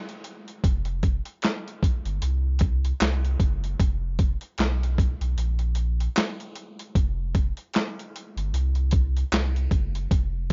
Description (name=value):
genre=lo-fi hip hop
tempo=76 BPM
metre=4/4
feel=swing 58% on 16ths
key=unclear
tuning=A4 = 441 Hz
part: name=dusty soul sampler-style drum kit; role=drums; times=0.1-10.5 s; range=handclaps, hi-hat, kick drum, snare drum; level=-27 LUFS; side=equal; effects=overdrive
part: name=warm sub bass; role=bass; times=0.6-10.5 s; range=F1 to C2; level=-28 LUFS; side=equal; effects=none
room=little or no reverb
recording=cassette tape, nothing above 7.5 kHz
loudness=-25 LUFS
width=mono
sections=0.0-10.5 A section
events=none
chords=none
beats=| 0.64 1.43 2.22 3.01 | 3.80 4.59 5.38 6.17 | 6.95 7.74 8.53 9.32 | 10.11